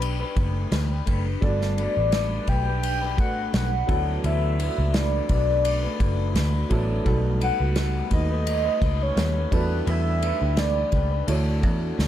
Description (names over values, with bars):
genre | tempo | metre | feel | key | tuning
indie pop, bedroom pop | 85 BPM | 4/4 | swing 55% on 16ths | D major | A4 = 441 Hz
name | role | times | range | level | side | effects
soft octave-layered synth lead | melody | 0.0-11.3 s | B4 to G5 | -27 LUFS | equal | phaser, analog chorus
electric guitar through a small old amp | accompaniment | 0.0-12.1 s | B2 to C#5 | -31 LUFS | left 3 dB | lush chorus, warbly pitch drift
vintage muted picked electric bass | bass | 0.0-12.1 s | F#1 to E2 | -24 LUFS | equal | none
unplugged drum kit | drums | 0.0-12.1 s | kick drum, ride cymbal, snare drum | -27 LUFS | equal | none
warm upright piano | accompaniment | 1.4-12.1 s | F#3 to C#5 | -33 LUFS | right 4 dB | none
room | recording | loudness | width
small room ambience | dark, warm production | -21 LUFS | side -11 dB against mid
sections
0.0-12.1 A section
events
none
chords
0.0 Em11; 1.4 Gmaj9; 3.9 D69; 7.1 B7b13; 9.5 Em11; 11.3 Dmaj9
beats
0.01 0.72 | 1.42 2.13 2.83 3.54 | 4.24 4.95 5.65 6.35 | 7.06 7.76 8.47 9.17 | 9.88 10.58 11.29 11.99